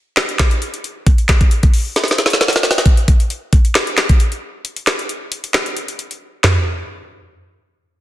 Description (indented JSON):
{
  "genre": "hip hop",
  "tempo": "134 BPM",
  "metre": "4/4",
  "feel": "half-time",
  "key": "none",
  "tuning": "none",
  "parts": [
    { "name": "trap drum kit", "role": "drums", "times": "0.2-6.5 s", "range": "handclaps, hi-hat, kick drum, snare drum, toms", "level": "-13 LUFS", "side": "equal", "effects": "vintage 12-bit sampler grit" }
  ],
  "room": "light reverb, digital ambience",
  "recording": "dense, heavily limited modern master",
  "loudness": "-13 LUFS",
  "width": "side -14 dB against mid",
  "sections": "0.0-2.9 A section; 2.9-6.4 B section; 6.4-8.0 C section",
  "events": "drum fill 2.0-2.9",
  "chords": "none"
}